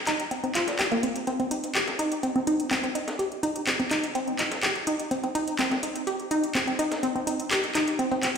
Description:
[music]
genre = progressive house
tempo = 125 BPM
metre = 4/4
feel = straight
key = C minor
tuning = A4 = 438 Hz
[part]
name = wide unison pluck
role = arpeggios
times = 0.1-8.3 s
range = Bb3 to G4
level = -26 LUFS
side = equal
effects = dub echo
[part]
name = breakbeat sampler-style drum kit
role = drums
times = 0.1-8.4 s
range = hi-hat, snare drum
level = -40 LUFS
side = equal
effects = high-pass filter on hats, low-pass filter on hats, high-pass filter on snare, low-pass filter on snare
[part]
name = house drum kit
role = drums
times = 0.1-8.4 s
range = handclaps, hi-hat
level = -29 LUFS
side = left 1 dB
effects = overdrive
[sound]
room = wet lush hall reverb, RT60 2.0 s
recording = played on a big sound system in a bare room, stone room reverb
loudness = -24 LUFS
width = side -6 dB against mid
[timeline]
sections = 0.0-8.4 A section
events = filter sweep on synth pluck 0.0-8.4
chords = none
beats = 0.31 0.79 | 1.27 1.75 2.23 2.71 | 3.19 3.67 4.15 4.63 | 5.11 5.59 6.07 6.55 | 7.03 7.51 7.99

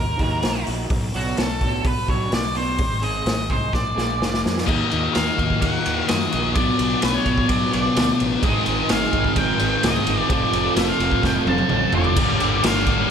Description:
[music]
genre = quiet-loud alternative rock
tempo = 128 BPM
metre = 4/4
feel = straight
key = unclear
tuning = A4 = 444 Hz
[part]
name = octave-fuzz lead guitar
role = melody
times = 0.0-13.1 s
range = F#4 to A5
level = -25 LUFS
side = equal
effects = distortion, tape echo
[part]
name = electric guitar through a small old amp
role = arpeggios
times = 0.0-12.2 s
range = Ab2 to A4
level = -27 LUFS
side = right 3 dB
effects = ensemble chorus, slapback echo, tape echo
[part]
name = fuzz fingered electric bass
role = bass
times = 0.0-13.1 s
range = F1 to Gb2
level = -28 LUFS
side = equal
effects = overdrive
[part]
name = raw garage drum kit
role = drums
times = 0.2-13.0 s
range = crash cymbal, hi-hat, kick drum, ride cymbal, snare drum, toms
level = -22 LUFS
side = equal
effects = none
[part]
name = scooped high-gain guitar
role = riff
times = 4.7-13.1 s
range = F2 to Eb4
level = -23 LUFS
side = left 9 dB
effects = distortion
[part]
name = thick fuzz guitar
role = riff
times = 8.4-13.1 s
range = G2 to F4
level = -25 LUFS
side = right 13 dB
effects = distortion
[sound]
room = light reverb, small room ambience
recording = none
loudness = -18 LUFS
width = side -7 dB against mid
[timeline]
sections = 0.0-4.7 A section; 4.7-12.2 B section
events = drum fill 3.7-4.7, 11.2-12.2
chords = 0.0 Ebm; 0.9 Bm; 2.8 Ab; 3.7 Bb7; 4.7 Ebm; 6.6 Bm; 8.4 Ab; 10.3 F; 12.2 Gm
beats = 0.43 | 0.91 1.38 1.85 2.32 | 2.79 3.27 3.74 4.21 | 4.68 5.15 5.62 6.09 | 6.55 7.02 7.49 7.96 | 8.43 8.90 9.37 9.83 | 10.30 10.77 11.23 11.70 | 12.17 12.64 13.10

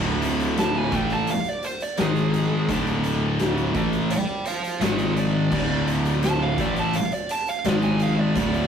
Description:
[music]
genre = stoner and doom metal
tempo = 85 BPM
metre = 4/4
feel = straight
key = unclear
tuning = A4 = 440 Hz
[part]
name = heavy high-gain guitar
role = riff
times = 0.0-8.7 s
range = D2 to A3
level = -29 LUFS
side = equal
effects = distortion
[part]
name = thick fuzz guitar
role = riff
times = 0.0-8.7 s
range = D2 to A3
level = -25 LUFS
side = left 3 dB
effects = distortion
[part]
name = thick fuzz guitar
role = riff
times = 0.0-8.7 s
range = D2 to A3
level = -27 LUFS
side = right 4 dB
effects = distortion
[part]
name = fuzz picked electric bass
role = bass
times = 0.0-8.7 s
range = D1 to A1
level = -33 LUFS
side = equal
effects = overdrive
[part]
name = oversized low-tuned drum kit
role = drums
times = 0.1-8.7 s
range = crash cymbal, hi-hat, kick drum, snare drum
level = -28 LUFS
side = left 2 dB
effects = none
[part]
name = fuzz lead guitar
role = melody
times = 0.6-8.7 s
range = F4 to A5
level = -28 LUFS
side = right 4 dB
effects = distortion
[sound]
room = wet small room reverb, RT60 0.6 s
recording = rough rehearsal-room recording, warm saturation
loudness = -20 LUFS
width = side -7 dB against mid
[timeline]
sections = 0.0-8.7 A section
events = lead electric guitar solo 0.0-8.7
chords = 0.0 D5; 2.0 G#5; 2.7 D5; 4.8 G#5; 5.5 D5; 7.7 G#5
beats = 0.58 1.28 1.99 | 2.70 3.40 4.11 4.82 | 5.53 6.24 6.95 7.66 | 8.37

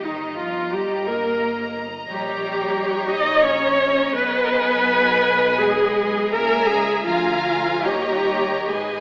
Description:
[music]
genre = classical, slow romantic movement for string orchestra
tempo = 66-93 BPM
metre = 3/4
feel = rubato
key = unclear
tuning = A4 = 440 Hz
[part]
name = rich studio violin section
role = melody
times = 0.0-9.0 s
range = G#5 to Bb5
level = -32 LUFS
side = equal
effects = none
[part]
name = clear symphonic violin section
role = second line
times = 0.0-9.0 s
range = B4 to G#5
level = -30 LUFS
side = equal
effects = none
[part]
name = rich chamber viola section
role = accompaniment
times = 0.0-9.0 s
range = Eb4 to D#5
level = -22 LUFS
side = equal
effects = none
[part]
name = clear chamber cello section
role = bass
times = 0.0-9.0 s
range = Eb3 to D#4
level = -31 LUFS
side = equal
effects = none
[part]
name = clear symphonic double bass section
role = bass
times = 0.1-9.0 s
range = G1 to D#2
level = -36 LUFS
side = equal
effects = none
[sound]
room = wet scoring stage reverb, RT60 2.1 s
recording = AM radio sound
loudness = -20 LUFS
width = mono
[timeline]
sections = 0.0-9.0 A section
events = none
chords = 0.0 Eb/G; 2.1 D#7/A#; 4.1 G#m/B; 6.3 A#m7b5/C#; 7.1 A#7/D; 7.8 D#7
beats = | 0.05 0.73 1.42 | 2.08 2.75 3.44 | 4.15 4.87 5.59 | 6.31 7.06 7.84 | 8.70

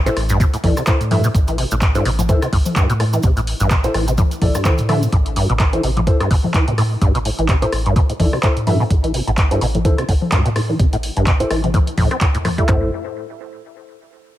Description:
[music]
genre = acid house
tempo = 127 BPM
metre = 4/4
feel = swing 56% on 16ths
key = A minor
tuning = A4 = 440 Hz
[part]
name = round analog bass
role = bass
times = 0.0-12.9 s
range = A1 to A2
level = -22 LUFS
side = equal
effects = sidechain pumping
[part]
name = acid bass, saw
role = riff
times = 0.1-12.9 s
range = G2 to C4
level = -20 LUFS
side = equal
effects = ensemble chorus, ping-pong delay
[part]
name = dark concert grand piano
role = stabs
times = 0.1-12.9 s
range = E4 to E5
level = -25 LUFS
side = equal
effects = low-pass filter, ping-pong delay
[part]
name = punchy analog drum machine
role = drums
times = 0.1-12.7 s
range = congas, handclaps, hi-hat, rim click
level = -23 LUFS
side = left 1 dB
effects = none
[part]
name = cabasa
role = percussion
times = 0.1-5.1 s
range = none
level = -33 LUFS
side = right 4 dB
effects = none
[part]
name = clean 12-bit digital drum machine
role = drums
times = 0.4-12.8 s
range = handclaps, kick drum, toms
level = -16 LUFS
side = equal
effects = none
[sound]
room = little or no reverb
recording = none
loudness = -14 LUFS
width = side -14 dB against mid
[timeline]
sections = 0.0-12.7 A section; 12.7-14.4 B section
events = filter sweep on grand piano 0.0-12.7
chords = 0.0 Am; 12.7 N.C.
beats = 0.40 0.87 | 1.35 1.82 2.29 2.76 | 3.24 3.71 4.18 4.65 | 5.12 5.60 6.07 6.54 | 7.01 7.49 7.96 8.43 | 8.90 9.38 9.85 10.32 | 10.79 11.27 11.74 12.21 | 12.68

